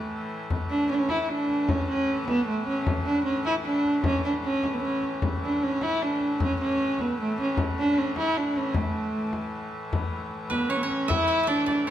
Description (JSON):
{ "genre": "medieval dance", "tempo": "153 BPM", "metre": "3/4", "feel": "straight", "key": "A major", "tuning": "A4 = 436 Hz", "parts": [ { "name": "dark viola da gamba", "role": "melody", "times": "0.0-11.9 s", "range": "A3 to E4", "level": "-25 LUFS", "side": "right 1 dB", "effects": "none" }, { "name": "rich hurdy-gurdy", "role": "drone", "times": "0.0-11.9 s", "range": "A2 to E3", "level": "-34 LUFS", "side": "left 1 dB", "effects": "none" }, { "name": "frame drum", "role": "percussion", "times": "0.1-11.9 s", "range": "none", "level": "-30 LUFS", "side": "left 2 dB", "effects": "none" }, { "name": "koto", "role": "second line", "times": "10.5-11.9 s", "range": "B4 to E5", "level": "-28 LUFS", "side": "right 4 dB", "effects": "none" } ], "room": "moderate recital hall reverb, RT60 1.8 s", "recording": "none", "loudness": "-24 LUFS", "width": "side -11 dB against mid", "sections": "0.5-9.9 A section; 9.9-11.9 B section", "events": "none", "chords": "none" }